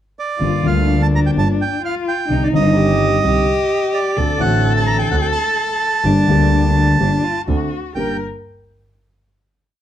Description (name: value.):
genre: tango.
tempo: 127 BPM.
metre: 4/4.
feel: rubato.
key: G minor.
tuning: A4 = 440 Hz.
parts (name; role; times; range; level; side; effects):
bandoneon; melody; 0.2-8.2 s; D5 to Bb5; -20 LUFS; right 4 dB; plate reverb.
warm cello; second line; 0.4-8.2 s; D4 to Bb4; -21 LUFS; left 4 dB; none.
dark concert grand piano; accompaniment; 0.4-8.2 s; G1 to G4; -18 LUFS; left 1 dB; none.
warm double bass; bass; 0.4-8.2 s; G1 to D2; -20 LUFS; right 1 dB; none.
room: moderate club ambience, RT60 0.5 s.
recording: dark, warm production, faint mains hum.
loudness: -14 LUFS.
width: side -11 dB against mid.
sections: 0.0-0.4 pickup bar; 0.4-7.9 A section; 7.9-9.8 final chord.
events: none.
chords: 0.4 Gm7; 2.3 Cmadd9; 4.2 D7; 6.0 Gm; 7.5 D7; 7.9 Gm.